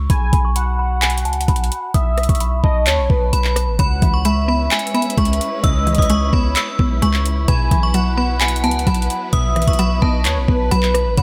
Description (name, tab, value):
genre	hip hop, trap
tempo	130 BPM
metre	4/4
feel	half-time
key	unclear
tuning	A4 = 439 Hz
part	metallic FM bell	melody	0.0-11.2 s	G#5 to E6	-25 LUFS	equal	chorus, low-pass filter
part	warm 808-style bass	bass	0.0-11.2 s	A1 to D#2	-21 LUFS	equal	none
part	warm velvety synth lead	second line	0.1-11.2 s	B4 to G#5	-27 LUFS	equal	chorus, delay
part	trap drum kit	drums	0.1-11.2 s	handclaps, hi-hat, kick drum, rim click	-21 LUFS	equal	none
part	mallet-like synth pluck	accompaniment	3.8-11.2 s	B2 to B3	-24 LUFS	equal	chorus, low-pass filter
part	warm symphonic string section	sustained chords	3.8-11.2 s	F#3 to B4	-30 LUFS	equal	none
room	light reverb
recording	none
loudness	-17 LUFS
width	mono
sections	0.0-11.2 A section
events	filter sweep 0.0-3.8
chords	0.1 Bsus4; 3.8 C#m7; 7.5 Bsus4